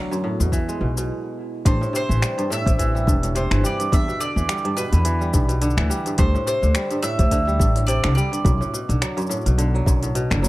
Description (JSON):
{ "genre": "folktronica", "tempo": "106 BPM", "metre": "4/4", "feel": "swing 56% on 16ths", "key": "A dorian", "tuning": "A4 = 442 Hz", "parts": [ { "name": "warbly tape-like pad", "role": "sustained chords", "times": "0.0-1.1 s", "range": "F#3 to A4", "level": "-32 LUFS", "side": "right 2 dB", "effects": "chorus, built-in reverb, phaser, vintage 12-bit sampler grit" }, { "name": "kora", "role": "arpeggios", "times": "0.0-10.5 s", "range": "F#2 to G#3", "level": "-25 LUFS", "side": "equal", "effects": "none" }, { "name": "organic electronic drum kit", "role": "drums", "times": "0.1-10.5 s", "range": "finger snaps, hi-hat, shaker", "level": "-28 LUFS", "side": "left 2 dB", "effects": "overdrive" }, { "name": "upright bass", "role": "bass", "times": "0.4-10.5 s", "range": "E1 to E2", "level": "-20 LUFS", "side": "equal", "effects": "none" }, { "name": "electronic kick drum", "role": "drums", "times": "0.5-10.0 s", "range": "none", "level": "-19 LUFS", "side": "equal", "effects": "overdrive" }, { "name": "bowl-back mandolin", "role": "melody", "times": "1.7-9.2 s", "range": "B4 to E5", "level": "-26 LUFS", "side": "right 1 dB", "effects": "tape echo" } ], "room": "little or no reverb", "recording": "none", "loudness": "-18 LUFS", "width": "side -18 dB against mid", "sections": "0.0-1.7 A section; 1.7-10.5 B section", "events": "stop 1.1-1.7", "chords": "0.0 Bm7; 0.5 E; 1.7 Am7; 3.9 Em7; 6.2 D7sus4; 8.4 Bm7" }